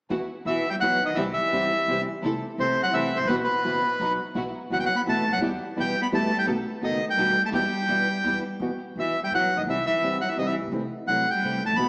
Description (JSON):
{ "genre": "tango", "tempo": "170 BPM", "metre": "3/4", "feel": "rubato", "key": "E harmonic minor", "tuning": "A4 = 440 Hz", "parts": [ { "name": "nylon-string guitar", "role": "accompaniment", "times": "0.1-11.9 s", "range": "B2 to F#4", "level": "-30 LUFS", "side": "equal", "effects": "wide subtle chorus" }, { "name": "warm studio string section", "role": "stabs", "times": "0.1-8.4 s", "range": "B3 to A4", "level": "-34 LUFS", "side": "equal", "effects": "tape echo" }, { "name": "upright bass", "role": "bass", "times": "0.1-11.9 s", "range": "F#1 to E2", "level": "-36 LUFS", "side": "equal", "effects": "none" }, { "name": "bandoneon", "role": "melody", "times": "0.5-11.9 s", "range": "B4 to B5", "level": "-24 LUFS", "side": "equal", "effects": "none" }, { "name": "clear cello", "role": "second line", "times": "0.5-11.9 s", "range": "B2 to B3", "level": "-31 LUFS", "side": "equal", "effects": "none" } ], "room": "wet plate reverb, RT60 2.5 s", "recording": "dreamy mix soaked in reverb, small speaker sound", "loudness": "-22 LUFS", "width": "side -36 dB against mid", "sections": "0.1-8.6 A section; 8.6-11.9 A section", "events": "none", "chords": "0.1 Esus2; 1.2 C; 2.2 Am/C; 3.3 Bsus4; 4.0 B; 4.4 Bsus4; 5.4 Em; 6.5 B7; 7.5 Em; 8.6 Esus2; 9.7 C; 10.7 Am/C" }